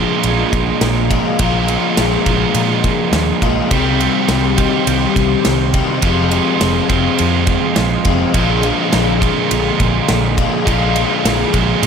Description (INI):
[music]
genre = rock, shoegaze and dream pop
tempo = 104 BPM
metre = 4/4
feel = straight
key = unclear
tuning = A4 = 440 Hz
[part]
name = evolving wavetable pad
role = sustained chords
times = 0.0-11.9 s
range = G4 to C6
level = -25 LUFS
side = equal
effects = chorus, built-in reverb
[part]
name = twelve-string electric guitar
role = arpeggios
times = 0.0-11.9 s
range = F3 to Eb4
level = -23 LUFS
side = left 1 dB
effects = wide subtle chorus, tape echo
[part]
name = biting overdriven guitar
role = riff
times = 0.0-11.9 s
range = F2 to G4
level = -18 LUFS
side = right 12 dB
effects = reverse reverb
[part]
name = overdriven semi-hollow guitar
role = riff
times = 0.0-11.9 s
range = F2 to G4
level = -19 LUFS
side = left 9 dB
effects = ensemble chorus
[part]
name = vintage muted fingered electric bass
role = bass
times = 0.2-11.9 s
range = F1 to Bb2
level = -19 LUFS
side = equal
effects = none
[part]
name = big rock drum kit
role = drums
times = 0.2-11.9 s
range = kick drum, ride cymbal, snare drum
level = -20 LUFS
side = right 1 dB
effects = none
[sound]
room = light reverb, studio ambience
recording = none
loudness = -12 LUFS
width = side -6 dB against mid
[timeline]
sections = 0.0-11.9 A section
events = none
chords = 0.0 Bb7sus4; 3.7 Cm; 6.0 Fm; 8.3 Bb7(no3)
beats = 0.24 0.82 | 1.40 1.98 2.55 3.13 | 3.71 4.29 4.87 5.45 | 6.03 6.61 7.19 7.77 | 8.35 8.93 9.51 10.09 | 10.67 11.25 11.83